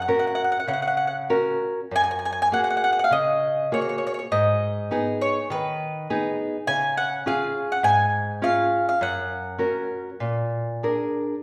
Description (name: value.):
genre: italian folk.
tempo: 101 BPM.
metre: 4/4.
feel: rubato.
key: F# major.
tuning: A4 = 440 Hz.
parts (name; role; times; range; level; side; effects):
mandolin; melody; 0.0-10.8 s; B4 to G#5; -25 LUFS; equal; none.
nylon-string guitar; accompaniment; 0.0-11.3 s; F#2 to A#4; -28 LUFS; equal; none.
room: wet large studio reverb, RT60 1.4 s.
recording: band playing live in one room.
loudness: -24 LUFS.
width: mono.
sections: 0.0-1.9 A section; 1.9-11.4 A section.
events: none.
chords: 0.0 F#; 1.9 F#add9; 4.3 G#m; 6.7 C#; 9.0 F#; 10.2 A#7.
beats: 0.09 0.69 1.30 | 1.92 2.52 3.12 3.72 | 4.31 4.91 5.49 6.08 | 6.66 7.25 7.83 8.43 | 9.02 9.61 10.22 10.85.